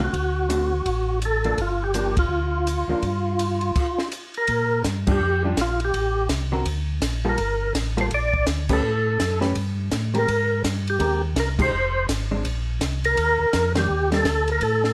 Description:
soul jazz organ trio; 166 BPM; 4/4; swing 63% on 8ths; G minor; A4 = 440 Hz
percussive tonewheel organ; melody; 0.0-14.9 s; F4 to D5; -25 LUFS; equal; slow rotary speaker, overdrive, chorus vibrato
vintage hollow-body jazz guitar; accompaniment; 0.0-14.2 s; D3 to B4; -29 LUFS; equal
mellow tonewheel organ; bass; 0.0-14.9 s; F1 to Bb2; -28 LUFS; equal; slow rotary speaker
compact cocktail drum kit; drums; 0.1-14.9 s; crash cymbal, hi-hat, kick drum, ride cymbal, snare drum; -31 LUFS; equal
light reverb; -23 LUFS; mono
0.0-4.5 A section; 4.5-14.9 B section
band accent 2.1, 5.0, 8.6, 11.5, 13.7
0.1 D7; 1.6 G7(no3); 4.5 Bb6; 5.9 Am7; 6.7 D5; 7.4 Gmadd9; 8.8 A7(no3); 10.3 Abmaj9; 11.7 Fm; 12.4 Bbsus2; 13.2 Ebmaj7

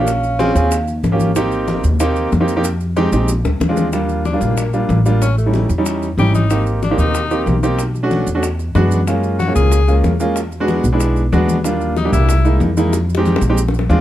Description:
Afro-Cuban jazz; 187 BPM; 4/4; straight; Eb major; A4 = 440 Hz
vibraphone with medium hard mallets; melody; 0.0-0.8 s; F5; -20 LUFS; right 4 dB
bright tenor saxophone; second line; 0.0-0.8, 4.3-12.6 s; A3 to Ab4; -22 LUFS; left 5 dB
warm concert grand piano; accompaniment; 0.0-14.0 s; G3 to Ab4; -18 LUFS; right 1 dB
upright bass; bass; 0.0-14.0 s; Ab1 to F#2; -17 LUFS; equal
bongos; percussion; 0.1-13.9 s; -27 LUFS; left 5 dB
congas; percussion; 0.1-14.0 s; -23 LUFS; left 2 dB
maracas; percussion; 0.1-14.0 s; -33 LUFS; right 6 dB
little or no reverb; dark, warm production; -14 LUFS; side -13 dB against mid
0.0-3.9 A section; 3.9-14.0 B section
drum fill 3.1-3.9, 12.9-14.0; tenor saxophone solo 3.9-14.0
0.1 Bbm7; 0.7 Eb7; 1.4 Abmaj7; 2.6 Fm7; 3.3 Bb7; 3.9 Ebmaj9; 5.2 A7#11; 6.5 Abmaj9; 7.8 Bm7; 8.4 E9; 9.1 Gbmaj9; 10.4 E9; 11.6 Ebmaj9; 12.3 C7alt; 12.9 Fm7

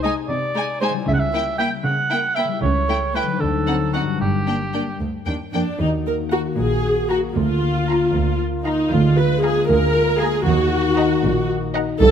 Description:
cinematic; 77 BPM (dotted quarters); 6/8; straight; Eb minor from 5.8 s; A4 = 440 Hz
warm studio violin section; melody; 0.0-11.9 s; F#5 to Bb5; -30 LUFS; left 2 dB
rich chamber violin section; second line; 0.0-11.9 s; D4 to Bb5; -31 LUFS; left 4 dB
warm cor anglais; second line; 0.0-5.0 s; F#4 to G5; -23 LUFS; right 2 dB
warm studio viola section; accompaniment; 0.0-12.1 s; Ab3 to Cb5; -21 LUFS; right 1 dB
concert harp; arpeggios; 0.0-12.1 s; G2 to C5; -25 LUFS; left 8 dB
warm symphonic cello section; bass; 0.0-12.1 s; C2 to D3; -25 LUFS; right 2 dB
rich chamber double bass section; bass; 1.1-12.1 s; G1 to Eb2; -23 LUFS; right 3 dB
warm French horn section; sustained chords; 5.8-12.1 s; Ab3 to Gb4; -28 LUFS; left 4 dB
moderate scoring stage reverb, RT60 1.8 s; -17 LUFS; side -8 dB against mid
0.0-5.8 A section; 5.8-12.1 B section
0.0 Ab/C; 1.1 C#dim7; 2.6 A7/C#; 3.4 D7b9; 4.2 Gm; 5.8 Ebm; 7.4 Bb/D; 8.9 Bb7/D; 10.5 Ebm

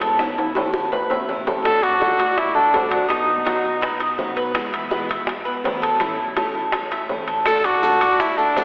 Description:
latin, Cuban son and guajira; 165 BPM; 4/4; straight; D major; A4 = 440 Hz
fingerpicked steel-string acoustic guitar; accompaniment; 0.0-8.6 s; B2 to F#4; -32 LUFS; equal
Cuban tres; arpeggios; 0.0-8.6 s; D#4 to E5; -24 LUFS; equal
upright bass; bass; 0.0-8.6 s; A1 to E3; -44 LUFS; equal
bongos; percussion; 0.0-8.6 s; -31 LUFS; equal
timbales; percussion; 0.0-8.6 s; -29 LUFS; equal
warm trumpet; melody; 1.6-4.4, 7.5-8.6 s; D4 to A4; -22 LUFS; equal
claves; percussion; 7.5-8.2 s; -33 LUFS; equal
maracas; percussion; 7.5-8.6 s; -42 LUFS; equal
wet concert hall reverb, RT60 2.1 s; recorded in a church or concert hall, telephone sound; -20 LUFS; mono
0.0-8.6 A section
drum fill 0.2-1.6
0.2 Aadd9; 1.6 D; 3.1 B; 4.6 E; 6.0 A; 7.5 D

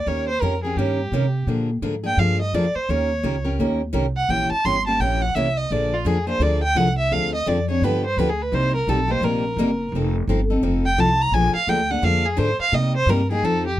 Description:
acoustic string swing (jazz manouche); 170 BPM; 4/4; swing 62% on 8ths; Bb mixolydian; A4 = 440 Hz
dark violin; melody; 0.0-13.8 s; F4 to C6; -22 LUFS; right 1 dB
upright bass; bass; 0.0-13.8 s; F1 to C3; -23 LUFS; equal
picked steel-string acoustic guitar; accompaniment; 0.1-13.7 s; C3 to Bb4; -23 LUFS; left 1 dB
little or no reverb; close, detailed microphones; -18 LUFS; side -13 dB against mid
0.0-13.8 A section
violin solo 0.0-13.8
0.1 Eb7; 1.5 Bb7; 2.9 Eb7; 4.3 Edim7; 5.7 Bb7; 7.1 Dm7b5; 7.8 G7; 8.5 Cm7; 9.9 F7; 11.3 Bb7; 12.7 Cm7

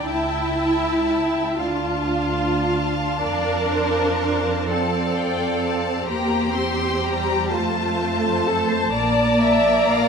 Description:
classical, slow romantic movement for symphony orchestra; 35-43 BPM (dotted quarters); 6/8; rubato; A4 = 441 Hz
rich studio violin section; melody; 0.0-10.1 s; G5 to C6; -28 LUFS; left 6 dB
rich studio violin section; second line; 0.0-10.1 s; C5 to A5; -26 LUFS; left 2 dB
rich studio viola section; accompaniment; 0.0-10.1 s; G3 to F4; -24 LUFS; right 1 dB
warm studio cello section; bass; 0.0-10.1 s; D4 to D5; -24 LUFS; right 2 dB
rich studio double bass section; bass; 0.1-10.1 s; Bb1 to F2; -28 LUFS; right 3 dB
moderate concert hall reverb, RT60 1.9 s; minimal, uncompressed stereo recording; -19 LUFS; side -6 dB against mid
0.0-10.1 A section
0.1 A7/C#; 1.6 Dm; 3.2 F; 6.1 C7/E; 7.5 F; 8.9 Bb

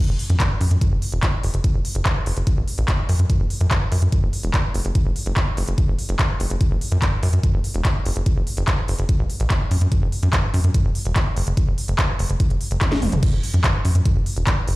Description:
psychedelic trance; 145 BPM; 4/4; straight; F# minor; A4 = 440 Hz
tight sequencer bass; bass; 0.1-14.7 s; E1 to F#2; -19 LUFS; equal
techno drum kit; drums; 0.2-14.8 s; crash cymbal, handclaps, hi-hat, snare drum, toms; -26 LUFS; equal; overdrive
electronic kick drum; drums; 0.4-14.6 s; -19 LUFS; equal; overdrive
digital ambience; played on a big sound system in a bare room, large studio reverb; -18 LUFS; side -20 dB against mid
0.0-14.8 A section
drum fill 12.8-13.2

